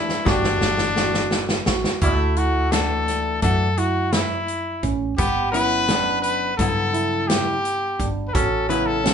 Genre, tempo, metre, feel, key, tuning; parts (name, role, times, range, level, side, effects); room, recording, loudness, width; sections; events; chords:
progressive instrumental, band music in an uneven meter; 171 BPM (eighths); 9/8; straight; D major; A4 = 442 Hz
brilliant trumpet; melody; 0.0-9.1 s; D4 to B4; -23 LUFS; left 2 dB
semi-hollow electric guitar; second line; 0.0-9.1 s; A3 to D4; -30 LUFS; equal
archtop guitar, miked and amplified; accompaniment; 0.0-9.1 s; C#3 to G4; -28 LUFS; left 5 dB
barky tine electric piano; arpeggios; 0.0-9.1 s; C#4 to G4; -27 LUFS; right 5 dB
natural country drum kit; drums; 0.1-9.1 s; hi-hat, kick drum, snare drum; -24 LUFS; equal
woody fretless electric bass; bass; 0.3-9.1 s; G1 to G2; -26 LUFS; right 1 dB
wet studio reverb, RT60 0.6 s; band playing live in one room, nothing above 10.9 kHz; -18 LUFS; side -7 dB against mid
0.0-2.0 A section; 2.0-9.1 B section
drum fill 0.0-2.0
0.0 Gsus2; 2.0 Dadd9; 5.2 Gadd9; 8.3 Aadd9